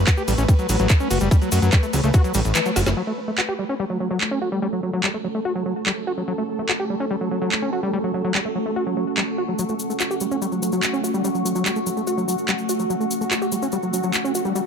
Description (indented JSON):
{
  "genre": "psychedelic trance",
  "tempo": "145 BPM",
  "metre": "4/4",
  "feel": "straight",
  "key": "F# phrygian",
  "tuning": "A4 = 439 Hz",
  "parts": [
    { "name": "swarming drone", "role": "sustained chords", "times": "0.0-14.7 s", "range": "A3 to B4", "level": "-27 LUFS", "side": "equal", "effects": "built-in reverb, sidechain pumping" },
    { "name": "fat analog bass", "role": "bass", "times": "0.0-2.9 s", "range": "F#1 to F#2", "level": "-20 LUFS", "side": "equal", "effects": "none" },
    { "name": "overdriven acid bass", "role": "riff", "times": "0.1-14.6 s", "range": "E3 to G4", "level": "-25 LUFS", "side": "equal", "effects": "auto-pan, sidechain pumping, tape echo" },
    { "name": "drum and bass drum kit", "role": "drums", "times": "0.1-14.2 s", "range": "handclaps, hi-hat, ride cymbal, snare drum", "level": "-24 LUFS", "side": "right 1 dB", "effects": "none" },
    { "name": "electronic kick drum", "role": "drums", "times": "0.1-2.2 s", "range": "none", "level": "-16 LUFS", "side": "equal", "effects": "overdrive" },
    { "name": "cabasa", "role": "percussion", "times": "0.1-2.9, 9.6-14.6 s", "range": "none", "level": "-31 LUFS", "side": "left 4 dB", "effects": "none" },
    { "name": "deep dark ambient pad", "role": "texture", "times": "4.8-14.7 s", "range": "C#4 to C#6", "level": "-29 LUFS", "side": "right 2 dB", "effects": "chorus, built-in reverb, sidechain pumping" }
  ],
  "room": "light reverb",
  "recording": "none",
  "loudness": "-19 LUFS",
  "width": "side -6 dB against mid",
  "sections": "0.0-3.0 A section; 3.0-14.7 B section",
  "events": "drop 0.0-3.0; kick drops out 2.6-3.0; band accent 2.6; drum fill 2.8",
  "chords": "0.0 F#5"
}